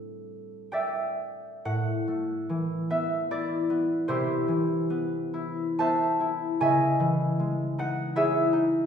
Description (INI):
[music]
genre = classical, solo harp piece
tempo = 55-81 BPM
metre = 3/4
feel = rubato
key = A dorian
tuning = A4 = 440 Hz
[part]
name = concert harp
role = solo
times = 0.0-8.9 s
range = A2 to A5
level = -25 LUFS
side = equal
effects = none
[sound]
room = wet recital hall reverb, RT60 1.4 s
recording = recorded in a church or concert hall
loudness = -24 LUFS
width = side -7 dB against mid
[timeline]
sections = 0.0-1.7 A section; 1.7-8.9 B section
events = none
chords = 0.0 Am7; 1.7 Amadd9; 4.1 Cmaj7; 6.6 C#madd9